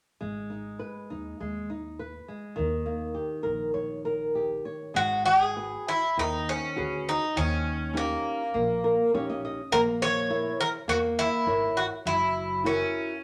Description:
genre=fado-style ballad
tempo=102 BPM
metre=4/4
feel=rubato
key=G# minor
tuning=A4 = 440 Hz
part: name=flamenco guitar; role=accompaniment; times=0.2-13.1 s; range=D#3 to D#5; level=-32 LUFS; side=equal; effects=none
part: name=upright bass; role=bass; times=0.2-12.8 s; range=F#1 to E2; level=-39 LUFS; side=equal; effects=none
part: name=Greek bouzouki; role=melody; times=5.0-13.2 s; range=A#3 to C#5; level=-28 LUFS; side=equal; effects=none
room=wet club reverb, RT60 0.8 s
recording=none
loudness=-28 LUFS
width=mono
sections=0.2-5.0 A section; 5.0-13.2 B section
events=nylon-string guitar fill 8.6-9.7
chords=0.2 G#m; 2.6 D#7; 5.0 G#m7; 7.4 D#7; 9.7 A#dim; 12.1 F#7

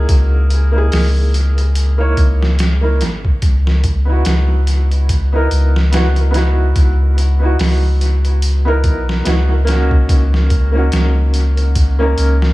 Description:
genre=trip hop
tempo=72 BPM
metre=4/4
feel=swing 57% on 16ths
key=C# dorian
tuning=A4 = 439 Hz
part: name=felt-muted upright piano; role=accompaniment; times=0.0-12.5 s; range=A#3 to C#5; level=-20 LUFS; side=right 1 dB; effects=tremolo, tape echo
part: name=soft dub sub bass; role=bass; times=0.0-12.5 s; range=G#1 to C#2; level=-13 LUFS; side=equal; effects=none
part: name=trip hop sampler-style drum kit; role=drums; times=0.1-12.5 s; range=hi-hat, kick drum, snare drum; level=-17 LUFS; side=equal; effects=dub echo
room=little or no reverb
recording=echo-heavy mix, small room ambience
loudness=-12 LUFS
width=side -18 dB against mid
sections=0.0-12.5 A section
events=none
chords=0.1 C#m69; 3.4 C#m11; 10.1 D#m7/C#

